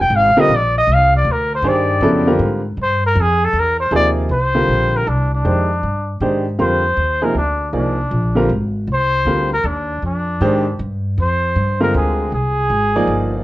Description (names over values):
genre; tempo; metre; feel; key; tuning
jazz; 157 BPM; 3/4; swing 66% on 8ths; F dorian; A4 = 439 Hz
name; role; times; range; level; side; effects
breathy trumpet; melody; 0.0-13.3 s; D4 to G5; -17 LUFS; equal; none
upright bass; bass; 0.0-13.4 s; G1 to Ab2; -19 LUFS; equal; none
clear baby grand piano; accompaniment; 0.4-13.4 s; C3 to D5; -18 LUFS; equal; none
room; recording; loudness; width
light reverb; worn, warbling old tape, cassette tape, warbly pitch drift; -14 LUFS; side -16 dB against mid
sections
0.0-4.3 A section; 4.3-13.4 B section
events
trumpet solo 0.0-4.3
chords
0.0 Fm69